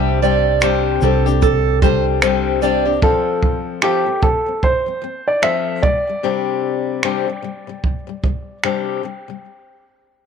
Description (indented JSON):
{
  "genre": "acoustic pop",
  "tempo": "75 BPM",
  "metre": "4/4",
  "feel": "swing 60% on 16ths",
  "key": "unclear",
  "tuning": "A4 = 440 Hz",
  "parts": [
    { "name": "flamenco guitar", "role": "accompaniment", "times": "0.0-9.5 s", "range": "C3 to A4", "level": "-20 LUFS", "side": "left 10 dB", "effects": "none" },
    { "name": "fingerpicked steel-string acoustic guitar", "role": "arpeggios", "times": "0.0-2.9 s", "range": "A4 to E5", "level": "-19 LUFS", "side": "right 14 dB", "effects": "none" },
    { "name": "hollow-body short-scale fingered electric bass", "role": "bass", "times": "0.0-3.0 s", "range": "C2", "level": "-19 LUFS", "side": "right 2 dB", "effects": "none" },
    { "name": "compact cocktail drum kit", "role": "drums", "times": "0.2-8.9 s", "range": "finger snaps, kick drum, shaker", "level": "-19 LUFS", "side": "right 2 dB", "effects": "none" },
    { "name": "warm upright piano", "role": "melody", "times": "3.0-8.6 s", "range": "G4 to E5", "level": "-19 LUFS", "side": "right 1 dB", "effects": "none" }
  ],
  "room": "light reverb",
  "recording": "1960s-style stereo with parts hard left and right",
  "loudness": "-15 LUFS",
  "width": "side -7 dB against mid",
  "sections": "0.0-3.0 A section; 3.0-9.4 B section",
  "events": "none",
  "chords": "0.0 Csus2; 3.0 F; 5.8 Csus2"
}